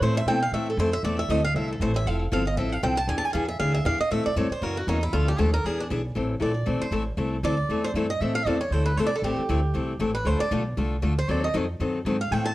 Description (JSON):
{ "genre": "acoustic string swing (jazz manouche)", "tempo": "234 BPM", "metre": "4/4", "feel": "swing 57% on 8ths", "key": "A minor", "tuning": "A4 = 438 Hz", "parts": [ { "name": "picked swing-style acoustic guitar", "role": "melody", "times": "0.0-12.5 s", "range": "D4 to A5", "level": "-28 LUFS", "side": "right 2 dB", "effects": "slapback echo" }, { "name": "picked steel-string acoustic guitar", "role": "accompaniment", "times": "0.0-12.5 s", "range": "B2 to A4", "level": "-27 LUFS", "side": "left 3 dB", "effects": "none" }, { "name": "upright bass", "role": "bass", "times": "0.0-12.5 s", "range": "F1 to B2", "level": "-27 LUFS", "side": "equal", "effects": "none" } ], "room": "light reverb", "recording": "worn, warbling old tape, cassette tape, warbly pitch drift", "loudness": "-23 LUFS", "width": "side -16 dB against mid", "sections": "0.0-6.2 A section; 6.2-12.5 A section", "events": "steel-string acoustic guitar solo 0.0-6.2, 6.2-12.5", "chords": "0.0 Am; 2.1 Fmaj7; 3.1 E7b9; 4.1 Am; 4.6 F#7; 5.1 Bm7b5; 5.6 E7; 6.2 Am; 10.3 Dm; 11.3 D#dim7" }